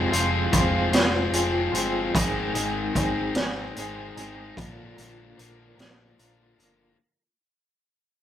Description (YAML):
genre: quiet-loud alternative rock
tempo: 50 BPM (dotted quarters)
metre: 6/8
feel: straight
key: unclear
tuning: A4 = 440 Hz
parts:
  - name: electric guitar through a small old amp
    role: arpeggios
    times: 0.0-7.0 s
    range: F2 to Bb4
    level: -29 LUFS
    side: equal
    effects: tremolo
  - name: crunchy overdriven guitar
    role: riff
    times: 0.0-7.0 s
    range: G#2 to F4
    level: -28 LUFS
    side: left 4 dB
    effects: none
  - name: picked electric bass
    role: bass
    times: 0.0-6.9 s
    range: F1 to Bb1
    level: -32 LUFS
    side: right 1 dB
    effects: none
  - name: raw garage drum kit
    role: drums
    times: 0.1-6.8 s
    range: hi-hat, kick drum, snare drum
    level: -25 LUFS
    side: equal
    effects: none
room: moderate stone room reverb, RT60 1.1 s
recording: rough rehearsal-room recording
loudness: -21 LUFS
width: side -10 dB against mid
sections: 0.0-7.0 A section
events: fade-out 0.0-7.0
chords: 0.0 Fm; 2.1 G#; 4.6 Bb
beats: 0.92 | 2.13 3.34 | 4.55 5.76